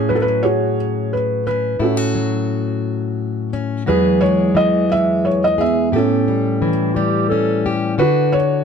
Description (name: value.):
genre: acoustic folk-pop ballad.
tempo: 58 BPM (dotted quarters).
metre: 6/8.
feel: straight.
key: E major.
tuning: A4 = 440 Hz.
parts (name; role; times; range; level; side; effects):
felt-muted upright piano; melody; 0.0-8.6 s; C#4 to E5; -18 LUFS; right 2 dB; none.
fingerpicked plugged-in steel-string acoustic guitar; accompaniment; 0.0-8.6 s; E2 to G#4; -19 LUFS; left 5 dB; none.
vibraphone with medium mallets; arpeggios; 3.9-6.2 s; F#3 to B3; -19 LUFS; right 5 dB; none.
dark clarinet; second line; 6.6-7.7 s; E4 to A4; -21 LUFS; right 4 dB; none.
room: light reverb.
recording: dark, warm production.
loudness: -15 LUFS.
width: side -6 dB against mid.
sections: 0.0-3.9 A section; 3.9-8.6 B section.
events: none.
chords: 0.0 F#madd9/A; 3.9 E; 5.9 A7; 8.0 Dmaj7.